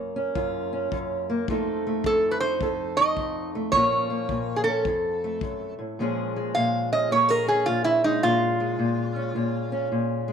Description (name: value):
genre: acoustic country blues, solo or duo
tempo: 107 BPM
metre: 4/4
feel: swing 64% on 8ths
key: Bb minor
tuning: A4 = 440 Hz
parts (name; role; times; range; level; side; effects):
- metal-body resonator slide guitar; melody; 0.0-9.9 s; Eb4 to F5; -23 LUFS; right 2 dB; none
- fingerpicked steel-string acoustic guitar; accompaniment; 0.0-10.3 s; F2 to A4; -27 LUFS; left 1 dB; none
- kick drum; drums; 0.4-5.6 s; none; -35 LUFS; left 5 dB; none
room: light reverb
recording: 1960s-style stereo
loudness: -22 LUFS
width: side -7 dB against mid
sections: 0.0-6.0 A section; 6.0-10.3 B section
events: resonator guitar played with a steel bar solo 6.0-10.3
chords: 0.0 Gbmaj7; 1.5 F7; 3.7 Bbm; 4.9 F; 6.0 Bbm7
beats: 0.35 0.92 | 1.48 2.04 2.60 3.17 | 3.73 4.29 4.85 5.42 | 5.98 6.54 7.10 7.67 | 8.23 8.79 9.35 9.91